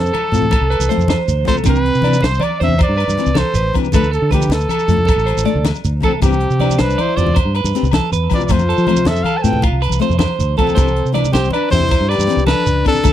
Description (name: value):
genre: highlife guitar band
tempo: 105 BPM (dotted quarters)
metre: 12/8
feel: straight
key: C major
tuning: A4 = 440 Hz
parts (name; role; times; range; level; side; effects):
- warm trumpet; melody; 0.0-13.1 s; G4 to A5; -19 LUFS; equal; none
- electric guitar at the edge of break-up; arpeggios; 0.0-13.1 s; C4 to D5; -22 LUFS; right 11 dB; tape echo
- fingered electric bass; bass; 0.0-13.1 s; A1 to F3; -17 LUFS; equal; none
- tight funk drum kit; drums; 0.1-13.1 s; hi-hat, kick drum, snare drum; -18 LUFS; equal; none
- agogo bells; percussion; 0.1-13.1 s; none; -29 LUFS; left 24 dB; none
- congas; percussion; 0.1-13.1 s; none; -23 LUFS; left 4 dB; none
- shekere; percussion; 0.1-13.1 s; none; -22 LUFS; right 3 dB; none
- picked steel-string acoustic guitar; accompaniment; 0.3-13.1 s; E3 to A4; -21 LUFS; left 12 dB; none
- warm alto saxophone; second line; 6.1-13.1 s; C4 to C5; -23 LUFS; left 11 dB; none
room: little or no reverb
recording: dry, close 1970s-style studio recording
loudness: -13 LUFS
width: side -11 dB against mid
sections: 0.0-13.1 A section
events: none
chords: 0.0 F; 1.7 Cadd9; 3.9 Dm; 6.2 Cadd9; 8.5 F; 10.8 Cadd9